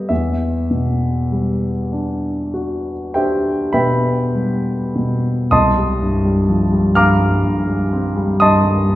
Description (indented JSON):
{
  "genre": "classical, impressionist solo piano",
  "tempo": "32-43 BPM (dotted quarters)",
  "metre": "9/8",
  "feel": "rubato",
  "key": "E minor, C minor from 5.5 s",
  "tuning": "A4 = 440 Hz",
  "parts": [
    { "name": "warm grand piano", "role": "solo", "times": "0.0-9.0 s", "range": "C2 to F6", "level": "-15 LUFS", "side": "equal", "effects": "none" }
  ],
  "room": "wet recital hall reverb, RT60 1.6 s",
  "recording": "heard from further back in the room",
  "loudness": "-15 LUFS",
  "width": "side -15 dB against mid",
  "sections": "0.0-5.5 A section; 5.5-9.0 B section",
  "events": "none",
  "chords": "0.1 Em9; 5.5 Cm6"
}